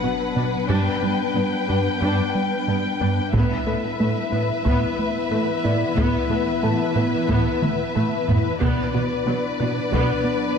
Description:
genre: cinematic, hybrid orchestral and electronic film score.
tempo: 91 BPM.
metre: 4/4.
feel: straight.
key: unclear.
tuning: A4 = 440 Hz.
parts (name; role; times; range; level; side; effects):
warm symphonic violin section; melody; 0.0-10.6 s; D5 to G5; -28 LUFS; left 4 dB; none.
warm symphonic violin section; second line; 0.0-10.6 s; B4; -28 LUFS; left 6 dB; none.
rich symphonic viola section; accompaniment; 0.0-10.2 s; F#3 to D4; -30 LUFS; right 1 dB; none.
dark French horn section; sustained chords; 0.0-10.6 s; B3 to E4; -29 LUFS; left 4 dB; none.
swarming drone; sustained chords; 0.0-10.6 s; E3 to B4; -30 LUFS; equal; built-in reverb.
tight sequenced synth; arpeggios; 0.0-10.1 s; G3 to B4; -33 LUFS; equal; none.
rubbery square bass; riff; 0.0-10.4 s; G2 to B3; -26 LUFS; right 2 dB; none.
dark symphonic cello section; bass; 0.0-10.0 s; G2 to B2; -27 LUFS; right 3 dB; none.
impact; sound effects; 0.0-0.7 s; none; -45 LUFS; equal; none.
felt-muted upright piano; texture; 0.0-0.7, 5.6-8.6 s; D5 to A5; -38 LUFS; left 2 dB; digital delay.
taiko ensemble; drums; 3.3-10.6 s; none; -26 LUFS; equal; none.
room: wet scoring stage reverb, RT60 1.8 s.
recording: dark, warm production.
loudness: -19 LUFS.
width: side -6 dB against mid.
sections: 0.0-10.6 A section.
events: impact 0.0-0.7; drum fill 7.6-8.6.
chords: 0.0 Bm; 0.7 G; 3.3 Asus2; 8.6 Bm.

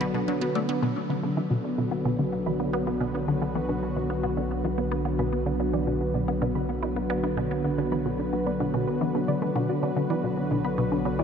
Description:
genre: ambient, sequencer-driven space music.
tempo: 110 BPM.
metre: 4/4.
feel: straight.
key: B minor.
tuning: A4 = 439 Hz.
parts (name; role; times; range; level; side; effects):
sweeping resonant pad; sustained chords; 0.0-11.2 s; D3 to B4; -27 LUFS; equal; chorus.
soft round pluck; arpeggios; 0.0-11.2 s; B3 to B5; -34 LUFS; right 1 dB; chorus, auto-pan, analog delay.
resonant blip pluck; riff; 0.0-11.2 s; B2 to B3; -30 LUFS; left 1 dB; phaser, analog delay.
round analog bass; bass; 0.0-11.2 s; B1; -35 LUFS; equal; none.
pulsing gated texture; texture; 0.0-0.9 s; none; barely audible; none; none.
room: wet huge ambient reverb, RT60 7.9 s.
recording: in a vast, echoing space.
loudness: -24 LUFS.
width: side -7 dB against mid.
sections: 0.8-11.2 A section.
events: filter sweep on synth arpeggio sound 0.8-11.2.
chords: 0.0 Bm.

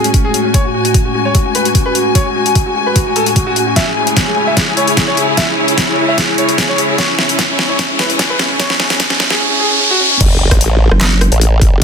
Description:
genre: heavy wobble dubstep.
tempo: 149 BPM.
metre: 4/4.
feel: half-time.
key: F# minor.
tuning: A4 = 441 Hz.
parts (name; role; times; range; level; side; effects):
clear concert grand piano; melody; 0.0-10.2 s; C#4 to E5; -18 LUFS; right 1 dB; vintage 12-bit sampler grit, digital delay.
evolving wavetable pad; sustained chords; 0.0-9.4 s; A2 to G#4; -20 LUFS; equal; chorus, built-in reverb, vintage 12-bit sampler grit, sidechain pumping.
dubstep drum kit; drums; 0.0-11.8 s; crash cymbal, handclaps, hi-hat, rim click, snare drum; -16 LUFS; left 1 dB; overdrive.
riser and sub drop; sound effects; 0.2-11.8 s; none; -19 LUFS; equal; none.
warm studio string section; texture; 0.0-9.4 s; E4 to G#5; -18 LUFS; left 3 dB; sidechain pumping.
electronic kick drum; drums; 0.1-11.8 s; none; -14 LUFS; equal; overdrive.
formant-sweep wobble bass; bass; 10.2-11.8 s; F#1 to A1; -11 LUFS; equal; chorus, overdrive.
vowel-sweep wobble bass; bass; 10.9-11.3 s; F#1; -12 LUFS; equal; chorus, overdrive.
room: light reverb, digital ambience.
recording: dense, heavily limited modern master, high-pass filter.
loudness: -10 LUFS.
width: side -6 dB against mid.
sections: 0.0-10.2 A section; 10.2-11.8 B section.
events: build-up 0.0-10.2; filter sweep on ambient pad 0.0-10.2; filter sweep 0.0-10.2; riser 0.2-10.2; drum fill 3.8-9.4; drop 10.2-11.8; impact 10.2-11.8.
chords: 0.0 F#madd9; 3.8 C#m; 10.2 F#m.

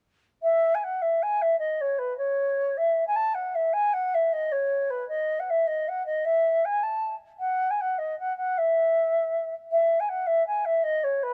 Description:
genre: celtic folk.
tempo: 104 BPM (dotted quarters).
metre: 6/8.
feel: straight.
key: E major.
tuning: A4 = 440 Hz.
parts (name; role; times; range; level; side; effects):
mellow wooden flute; solo; 0.4-11.3 s; B4 to A5; -26 LUFS; equal; none.
room: little or no reverb.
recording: close, detailed microphones.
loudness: -26 LUFS.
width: mono.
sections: 0.4-9.7 A section; 9.7-11.3 A section.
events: none.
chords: none.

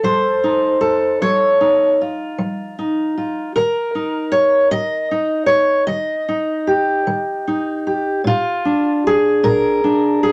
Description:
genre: acoustic country blues, solo or duo.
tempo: 51 BPM (dotted quarters).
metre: 12/8.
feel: straight.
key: unclear.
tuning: A4 = 441 Hz.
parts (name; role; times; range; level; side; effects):
fingerpicked steel-string acoustic guitar; solo; 0.0-10.3 s; Bb2 to Eb5; -17 LUFS; equal; none.
room: wet studio ambience, RT60 0.5 s.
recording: none.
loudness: -17 LUFS.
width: mono.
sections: 0.0-10.3 A section.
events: none.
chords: 0.0 F7; 3.6 Eb; 8.3 Bb7.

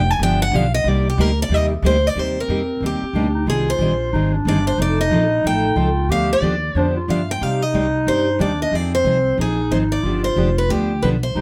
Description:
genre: acoustic string swing (jazz manouche).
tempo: 183 BPM.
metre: 4/4.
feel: swing 61% on 8ths.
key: C minor.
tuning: A4 = 439 Hz.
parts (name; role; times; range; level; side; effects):
picked acoustic archtop guitar; melody; 0.0-11.4 s; G4 to Ab5; -23 LUFS; equal; none.
upright bass; bass; 0.0-11.4 s; F1 to C3; -23 LUFS; equal; none.
picked steel-string acoustic guitar; accompaniment; 0.2-11.4 s; C3 to D5; -25 LUFS; equal; none.
growling clarinet; second line; 2.2-11.4 s; C4 to G4; -27 LUFS; equal; tape echo.
room: light reverb.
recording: none.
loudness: -19 LUFS.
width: mono.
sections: 0.0-2.2 A section; 2.2-11.4 B section.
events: steel-string acoustic guitar solo 0.0-2.2.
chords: 0.0 G7; 0.9 Cm7; 3.5 Abmaj7; 4.8 F7; 6.1 G7; 7.4 Cmadd9; 8.7 Fm7; 10.0 G7.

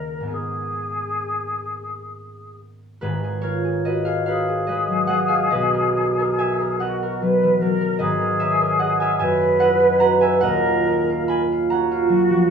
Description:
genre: classical, impressionist duo for flute and harp.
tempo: 44-53 BPM (dotted quarters).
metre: 6/8.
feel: rubato.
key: G# minor.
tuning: A4 = 440 Hz.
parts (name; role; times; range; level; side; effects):
mellow silver concert flute; melody; 0.0-12.5 s; F#4 to B4; -21 LUFS; equal; none.
concert harp; accompaniment; 0.0-12.5 s; D#1 to B5; -20 LUFS; right 1 dB; none.
room: moderate large studio reverb, RT60 0.8 s.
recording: small room ambience.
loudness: -18 LUFS.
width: side -6 dB against mid.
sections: 0.0-3.0 A section; 3.0-12.5 B section.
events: none.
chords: 0.3 G#madd9; 3.0 G#m6; 5.5 Bmaj7; 8.0 G#madd9; 9.2 F#9sus4; 10.4 D#m9.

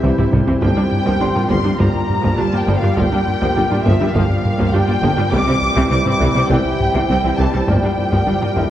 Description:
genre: cinematic, hybrid orchestral and electronic film score.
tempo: 102 BPM.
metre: 4/4.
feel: straight.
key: G dorian.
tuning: A4 = 440 Hz.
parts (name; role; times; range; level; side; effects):
rich studio violin section; melody; 0.0-8.7 s; E5 to D6; -25 LUFS; equal; none.
clear symphonic violin section; second line; 0.0-8.7 s; E5 to D6; -25 LUFS; left 2 dB; none.
clear symphonic viola section; accompaniment; 0.0-8.6 s; C3 to F4; -25 LUFS; right 1 dB; none.
mellow French horn section; sustained chords; 0.0-8.7 s; Bb3 to G4; -26 LUFS; left 3 dB; none.
soft additive organ-like pad; sustained chords; 0.0-8.7 s; F3 to C5; -25 LUFS; equal; ensemble chorus, built-in reverb.
warm trombone section; sustained chords; 0.0-8.7 s; E3 to G3; -27 LUFS; right 2 dB; none.
mallet-like synth pluck; arpeggios; 0.0-8.6 s; C3 to F4; -26 LUFS; right 1 dB; none.
round analog bass; riff; 0.0-8.7 s; C2 to G3; -22 LUFS; left 1 dB; none.
dark tuba; bass; 0.0-8.6 s; G1 to C2; -25 LUFS; right 2 dB; none.
rich symphonic cello section; bass; 0.0-8.6 s; G2 to C3; -24 LUFS; right 1 dB; none.
rich symphonic double bass section; bass; 0.0-8.6 s; G1 to C2; -25 LUFS; right 2 dB; none.
solo taiko drums; drums; 0.0-8.7 s; none; -23 LUFS; equal; none.
warm concert grand piano; texture; 0.0-8.7 s; E4 to C6; -32 LUFS; left 3 dB; none.
room: wet scoring stage reverb, RT60 1.9 s.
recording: worn, warbling old tape, cassette tape, warbly pitch drift.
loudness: -14 LUFS.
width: side -12 dB against mid.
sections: 0.0-8.7 A section.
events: drum fill 0.0-0.6.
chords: 0.0 C; 0.6 Gm7; 5.3 C; 7.7 Gm7.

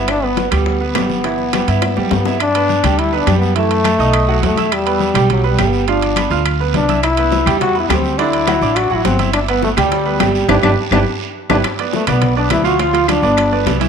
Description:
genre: latin, salsa.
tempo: 208 BPM.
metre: 4/4.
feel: straight.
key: G major.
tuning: A4 = 439 Hz.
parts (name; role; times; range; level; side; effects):
clear trombone; melody; 0.0-13.8 s; F#3 to F#4; -18 LUFS; left 3 dB; none.
bright concert grand piano; accompaniment; 0.0-13.9 s; D3 to F6; -19 LUFS; right 10 dB; none.
upright bass; bass; 0.0-13.9 s; G1 to G2; -19 LUFS; equal; none.
bongos; percussion; 0.1-2.3, 7.0-13.8 s; none; -24 LUFS; left 10 dB; none.
claves; percussion; 0.1-13.5 s; none; -26 LUFS; left 13 dB; none.
congas; percussion; 0.1-13.9 s; none; -24 LUFS; left 10 dB; none.
guiro; percussion; 0.1-13.9 s; none; -29 LUFS; right 12 dB; none.
timbales; percussion; 0.1-13.9 s; none; -25 LUFS; right 12 dB; none.
room: moderate echo chamber reverb, RT60 1.5 s, small room ambience.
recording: 1960s-style stereo with parts hard left and right.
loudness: -13 LUFS.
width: side -6 dB against mid.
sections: 0.0-2.4 A section; 2.4-11.6 A section; 11.6-13.9 B section.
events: drum fill 1.8-2.4, 10.5-11.6; band accent 10.5-11.6.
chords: 0.1 G6; 2.4 G; 3.6 B7sus4; 4.1 B7; 4.7 Em; 5.9 G7; 7.0 Cmaj7; 8.2 D7; 9.3 G6; 11.6 Bdim; 12.8 Dm; 13.4 G.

